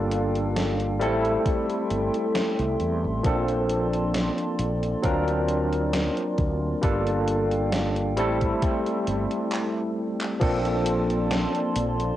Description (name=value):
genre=vaporwave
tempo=67 BPM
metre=4/4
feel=swing 53% on 16ths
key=Bb lydian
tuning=A4 = 444 Hz
part: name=barky tine electric piano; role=accompaniment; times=0.0-12.2 s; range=F3 to A#4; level=-25 LUFS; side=equal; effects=overdrive, fast stereo tremolo, wide subtle chorus, vintage 12-bit sampler grit, cassette tape, analog delay
part: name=warbly tape-like pad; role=sustained chords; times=0.0-12.2 s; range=Bb3 to C6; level=-32 LUFS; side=left 2 dB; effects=chorus, built-in reverb, cassette tape
part: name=fretless electric bass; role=bass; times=0.0-12.1 s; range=G1 to E2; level=-28 LUFS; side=equal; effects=none
part: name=gated 80s digital drum machine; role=drums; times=0.1-12.2 s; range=crash cymbal, handclaps, hi-hat, snare drum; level=-31 LUFS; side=equal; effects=gated reverb, gated reverb snare, overdrive, cassette tape
part: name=electronic kick drum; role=drums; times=1.5-10.6 s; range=none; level=-26 LUFS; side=equal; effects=overdrive, cassette tape
room=light reverb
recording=home recording on cassette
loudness=-22 LUFS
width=side -13 dB against mid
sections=0.0-10.4 A section; 10.4-12.2 B section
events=drum fill 9.5-10.4; stop 9.5-10.4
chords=0.0 Gm9; 1.0 Am7; 3.2 Bbmaj9; 5.0 D7alt; 6.8 Gm9; 8.2 Am7; 10.4 Bbmaj9